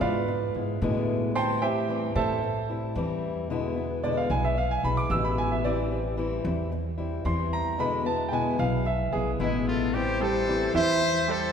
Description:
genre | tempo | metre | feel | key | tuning
latin, Cuban son and guajira | 112 BPM | 4/4 | straight | A minor | A4 = 441 Hz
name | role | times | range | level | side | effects
fingerpicked acoustic archtop guitar | accompaniment | 0.0-11.0 s | B2 to E4 | -30 LUFS | left 4 dB | none
bright concert grand piano | arpeggios | 0.0-11.5 s | E3 to E6 | -28 LUFS | right 3 dB | none
upright bass | bass | 0.0-11.5 s | A1 to A2 | -30 LUFS | equal | none
brilliant trumpet | melody | 9.4-11.5 s | E4 to C5 | -28 LUFS | left 2 dB | none
breathy bright jazz flute | second line | 9.4-11.5 s | G#4 to E5 | -31 LUFS | left 4 dB | none
room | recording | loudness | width
wet church reverb, RT60 2.7 s | recorded in a church or concert hall | -24 LUFS | side -7 dB against mid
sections
0.0-9.9 A section; 9.9-11.5 B section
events
grand piano solo 0.0-9.9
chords
0.0 E7b9; 1.4 Am7; 3.5 E7; 5.7 Am7; 7.8 E7; 9.9 Am7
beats
0.28 0.82 | 1.35 1.89 2.43 2.96 | 3.50 4.04 4.58 5.11 | 5.65 6.19 6.72 7.26 | 7.80 8.33 8.87 9.40 | 9.94 10.48 11.01

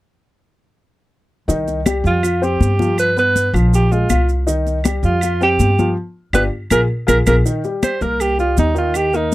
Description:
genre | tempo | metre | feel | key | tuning
Afro-Cuban jazz | 161 BPM | 4/4 | straight | C minor | A4 = 443 Hz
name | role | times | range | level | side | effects
warm upright piano | accompaniment | 1.5-9.3 s | Eb3 to F5 | -21 LUFS | left 3 dB | none
upright bass | bass | 1.5-9.3 s | G1 to G2 | -18 LUFS | equal | none
congas | percussion | 1.5-9.3 s | none | -23 LUFS | left 4 dB | none
maracas | percussion | 1.5-9.3 s | none | -30 LUFS | right 10 dB | none
claves | percussion | 1.9-9.1 s | none | -28 LUFS | right 3 dB | none
breathy alto saxophone | melody | 2.1-9.3 s | Eb4 to C5 | -17 LUFS | right 2 dB | none
room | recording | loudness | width
little or no reverb | none | -14 LUFS | side -17 dB against mid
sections
1.5-7.5 A section; 7.5-9.3 B section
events
band accent 6.0-7.5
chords
1.5 Cm; 2.2 Fsus2; 3.0 G7; 3.7 Bb5; 4.5 Cm; 5.2 Fsus2; 6.0 G7(no3); 6.7 Bb5; 7.5 Cm7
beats
| 1.49 1.86 2.23 2.61 | 2.98 3.35 3.73 4.10 | 4.47 4.85 5.22 5.59 | 5.97 6.34 6.71 7.09 | 7.46 7.83 8.21 8.58 | 8.95 9.32

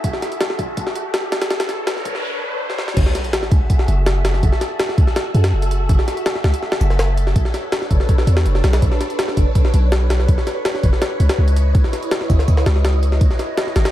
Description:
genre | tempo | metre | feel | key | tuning
drum and bass, jungle | 164 BPM | 4/4 | straight | F# minor | A4 = 440 Hz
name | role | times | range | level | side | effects
soft string machine | sustained chords | 0.0-13.9 s | D4 to E5 | -25 LUFS | equal | phaser, ensemble chorus
jungle sampler-style drum kit | drums | 0.0-13.9 s | crash cymbal, hi-hat, kick drum, snare drum | -18 LUFS | equal | none
riser, noise sweep and sub drop | sound effects | 0.0-4.4 s | none | -28 LUFS | equal | none
warm 808-style bass | bass | 3.0-13.8 s | F#1 to F#2 | -16 LUFS | equal | none
room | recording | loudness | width
little or no reverb | high-pass filter | -15 LUFS | side -13 dB against mid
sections
0.0-3.0 A section; 3.0-13.9 B section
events
build-up 0.0-3.0; riser 0.0-3.0; filter sweep 0.0-3.0; noise sweep 1.5-3.0; drum fill 2.7; drop 3.0-13.9; impact 3.0-4.4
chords
0.0 F#m9; 1.5 Bm9; 3.0 F#m9; 7.4 Bm9; 11.0 C#m9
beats
| 0.04 0.41 0.77 1.14 | 1.50 1.87 2.23 2.60 | 2.97 3.33 3.70 4.07 | 4.43 4.80 5.16 5.53 | 5.89 6.26 6.63 6.99 | 7.36 7.72 8.09 8.46 | 8.82 9.19 9.55 9.92 | 10.28 10.65 11.02 11.38 | 11.75 12.11 12.48 12.85 | 13.21 13.58

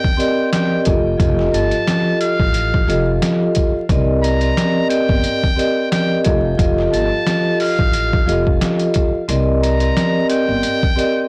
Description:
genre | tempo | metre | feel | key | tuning
hip hop, boom-bap hip-hop | 89 BPM | 4/4 | swing 55% on 16ths | C dorian | A4 = 440 Hz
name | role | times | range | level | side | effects
trumpet with metal mute | melody | 0.0-11.3 s | F5 to Bb5 | -26 LUFS | equal | high-pass filter, low-pass filter, tape echo
trip hop sampler-style drum kit | drums | 0.0-11.2 s | hi-hat, kick drum, snare drum | -21 LUFS | equal | overdrive
vibraphone with soft mallets | accompaniment | 0.2-11.3 s | F3 to Eb5 | -20 LUFS | equal | high-pass filter, low-pass filter
upright bass | bass | 0.9-10.6 s | F1 to C2 | -22 LUFS | equal | transformer saturation
room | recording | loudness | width
light reverb | blown-out, overdriven recording, vinyl crackle, overdrive | -17 LUFS | mono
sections
0.0-11.3 A section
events
kick muted 9.3-10.6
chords
0.0 Cm7; 0.9 F7; 3.9 Cm7; 6.3 F7; 9.3 Cm7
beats
0.52 | 1.20 1.87 2.54 3.22 | 3.89 4.57 5.24 5.92 | 6.59 7.26 7.94 8.61 | 9.29 9.96 10.63

